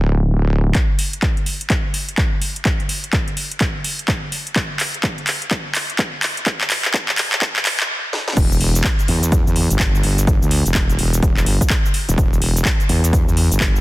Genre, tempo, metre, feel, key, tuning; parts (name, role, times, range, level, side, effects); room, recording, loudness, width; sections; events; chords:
bass house; 126 BPM; 4/4; swing 62% on 16ths; E minor; A4 = 439 Hz
wobble bass; bass; 0.0-0.7, 8.4-13.8 s; D1 to E2; -17 LUFS; equal; chorus, overdrive, sidechain pumping
electronic kick drum; drums; 0.7-13.7 s; -18 LUFS; equal; overdrive
house drum kit; drums; 0.7-13.8 s; crash cymbal, handclaps, hi-hat, shaker, snare drum; -20 LUFS; equal; overdrive, high-pass filter on snare, high-pass filter on hats, high-pass filter on cymbals, high-pass filter on perc, high-pass filter on room
little or no reverb; dense, heavily limited modern master, high-pass filter; -16 LUFS; side -18 dB against mid
0.8-8.4 A section; 8.4-13.8 B section
build-up 0.8-8.4; drum fill 0.8-7.9, 8.1; filter sweep 0.8-8.4; stop 7.9-8.4; drop 8.4-13.8